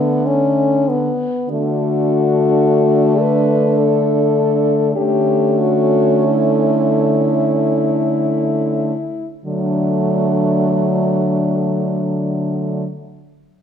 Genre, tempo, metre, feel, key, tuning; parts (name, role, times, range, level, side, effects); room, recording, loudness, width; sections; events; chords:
classical, lyrical piece for horn quartet; 34-53 BPM; 3/4; rubato; D major; A4 = 440 Hz
mellow French horn; melody; 0.0-12.9 s; D4 to B4; -19 LUFS; left 6 dB
warm French horn; second line; 0.0-12.9 s; A3 to D4; -22 LUFS; right 8 dB
warm French horn; accompaniment; 0.0-12.9 s; F#3 to C#4; -18 LUFS; left 2 dB
warm French horn; bass; 0.0-12.9 s; D3; -20 LUFS; right 2 dB
moderate recital hall reverb, RT60 1.3 s; -14 LUFS; side -8 dB against mid
0.0-1.5 A section; 1.5-9.5 B section; 9.5-13.6 C section
slowing down 0.0-9.5
0.0 D5; 1.5 D